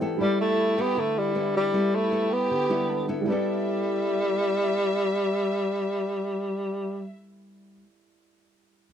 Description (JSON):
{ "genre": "bossa nova", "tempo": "156 BPM", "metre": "4/4", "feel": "straight", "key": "G major", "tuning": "A4 = 443 Hz", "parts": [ { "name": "nylon-string guitar", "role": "accompaniment", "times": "0.0-7.9 s", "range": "D3 to A4", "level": "-31 LUFS", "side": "left 3 dB", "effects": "none" }, { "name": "warm grand piano", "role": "accompaniment", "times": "0.0-8.9 s", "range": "G3 to A5", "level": "-33 LUFS", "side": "right 8 dB", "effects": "none" }, { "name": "breathy tenor saxophone", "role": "melody", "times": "0.2-7.1 s", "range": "G3 to B3", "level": "-25 LUFS", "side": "equal", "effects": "none" }, { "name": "warm symphonic violin section", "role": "second line", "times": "0.2-7.1 s", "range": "E4 to E5", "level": "-35 LUFS", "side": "left 1 dB", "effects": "none" } ], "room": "light reverb", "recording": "dry, close 1970s-style studio recording", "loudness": "-23 LUFS", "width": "side -9 dB against mid", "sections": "0.0-3.3 A section; 3.3-6.3 B section", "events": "grand piano fill 0.0, 2.7-3.3", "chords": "0.2 G69" }